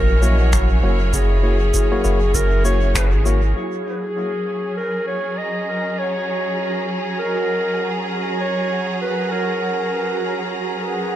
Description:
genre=ambient dub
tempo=99 BPM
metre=4/4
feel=swing 59% on 16ths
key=F# mixolydian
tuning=A4 = 439 Hz
part: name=dark clarinet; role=melody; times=0.0-11.2 s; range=G#4 to D#5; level=-23 LUFS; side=left 1 dB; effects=vintage 12-bit sampler grit, dub echo
part: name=clear symphonic string section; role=sustained chords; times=0.0-11.2 s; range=F#3 to A#5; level=-26 LUFS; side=equal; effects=low-pass filter
part: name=soft dub sub bass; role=bass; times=0.0-3.5 s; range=F#1 to A#1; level=-17 LUFS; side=equal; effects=none
part: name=bubbling stepped-filter texture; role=texture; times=0.0-11.2 s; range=E4 to F#5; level=-29 LUFS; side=right 8 dB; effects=chorus, built-in reverb
part: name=tine electric piano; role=stabs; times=0.2-3.4 s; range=A#3 to C#5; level=-28 LUFS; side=left 3 dB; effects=auto-pan, dub echo
part: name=electronic cabasa and finger snaps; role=drums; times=0.2-3.4 s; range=none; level=-26 LUFS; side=equal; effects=dub echo
part: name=electronic kick drum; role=drums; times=0.5-3.1 s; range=none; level=-22 LUFS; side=equal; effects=overdrive
room=moderate spring reverb, RT60 2.3 s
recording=none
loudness=-17 LUFS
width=side -12 dB against mid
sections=0.0-3.6 A section; 3.6-11.2 B section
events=band accent 3.0-3.3; filter sweep on string section 3.6-11.2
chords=0.0 F#7; 3.6 F#

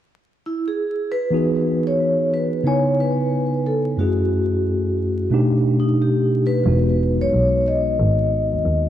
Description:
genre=hip hop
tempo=90 BPM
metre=4/4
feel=swing 61% on 16ths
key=E major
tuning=A4 = 440 Hz
part: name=vibraphone with medium mallets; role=melody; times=0.5-8.9 s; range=D#4 to D#5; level=-22 LUFS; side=equal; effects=diffuse ambient delay
part: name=mellow tine electric piano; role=accompaniment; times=1.3-8.9 s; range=F#2 to G#5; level=-20 LUFS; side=equal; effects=medium stereo tremolo
part: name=dark double bass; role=bass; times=6.7-8.9 s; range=E1 to D#2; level=-19 LUFS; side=equal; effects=none
room=moderate plate reverb, RT60 3.2 s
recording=dreamy mix soaked in reverb, vinyl crackle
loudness=-17 LUFS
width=side -11 dB against mid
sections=0.0-1.3 A section; 1.3-8.9 B section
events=none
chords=0.0 N.C.; 1.3 Emaj7; 2.7 C#m7; 4.0 F#m7; 5.3 B7alt; 6.7 Emaj7

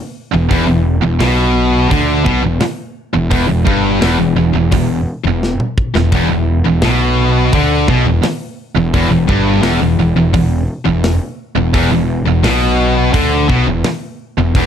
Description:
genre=heavy metal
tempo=85 BPM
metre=4/4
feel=straight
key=E minor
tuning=A4 = 440 Hz
part: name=heavy high-gain guitar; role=riff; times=0.3-14.7 s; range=E2 to D3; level=-16 LUFS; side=right 9 dB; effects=distortion
part: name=high-gain distorted guitar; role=riff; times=0.3-14.7 s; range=E2 to D3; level=-16 LUFS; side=left 9 dB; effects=distortion
part: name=fuzz picked electric bass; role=bass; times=0.3-14.7 s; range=E1 to D2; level=-16 LUFS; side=equal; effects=overdrive
part: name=tight metal drum kit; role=drums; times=0.5-14.7 s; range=hi-hat, kick drum, snare drum, toms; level=-19 LUFS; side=equal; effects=none
room=light reverb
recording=dark, warm production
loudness=-11 LUFS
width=side -8 dB against mid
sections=0.0-14.7 A section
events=drum fill 5.4-6.1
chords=0.0 Em

